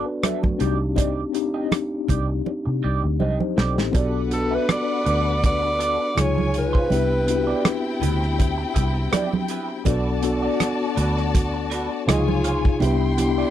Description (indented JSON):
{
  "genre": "lush 1970s-style soul",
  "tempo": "81 BPM",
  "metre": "4/4",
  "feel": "swing 54% on 16ths",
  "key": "unclear",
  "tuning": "A4 = 440 Hz",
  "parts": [
    { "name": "mellow tine electric piano", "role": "accompaniment", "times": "0.0-13.5 s", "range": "B#2 to Eb5", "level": "-25 LUFS", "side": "left 4 dB", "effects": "medium stereo tremolo" },
    { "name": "electric guitar through a small old amp", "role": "riff", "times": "0.0-13.5 s", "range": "G#3 to E5", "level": "-30 LUFS", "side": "right 8 dB", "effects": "wah" },
    { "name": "vintage muted fingered electric bass", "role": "bass", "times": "0.0-13.4 s", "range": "A1 to C3", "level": "-24 LUFS", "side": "equal", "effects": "none" },
    { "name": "warm soul drum kit", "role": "drums", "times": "0.2-13.4 s", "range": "hi-hat, kick drum, rim click, snare drum", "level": "-23 LUFS", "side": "equal", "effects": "none" },
    { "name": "congas", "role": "percussion", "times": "0.2-13.4 s", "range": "none", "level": "-27 LUFS", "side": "right 5 dB", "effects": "none" },
    { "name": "warm studio string section", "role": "second line", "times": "4.0-13.5 s", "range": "C4 to C6", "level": "-29 LUFS", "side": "left 4 dB", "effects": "none" },
    { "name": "breathy alto saxophone", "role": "melody", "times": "4.3-8.0 s", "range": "A4 to D5", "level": "-24 LUFS", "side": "right 1 dB", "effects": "none" }
  ],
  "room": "little or no reverb",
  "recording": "none",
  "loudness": "-19 LUFS",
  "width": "side -11 dB against mid",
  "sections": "0.0-3.9 A section; 3.9-13.5 B section",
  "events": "drum fill 2.5-3.9",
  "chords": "0.0 Gmaj9 (rootless); 0.6 Cmadd9; 3.9 Bm7; 6.2 C#maj7; 6.9 Cmaj7; 9.9 Bm7; 12.1 C#maj7; 12.8 Cmaj7"
}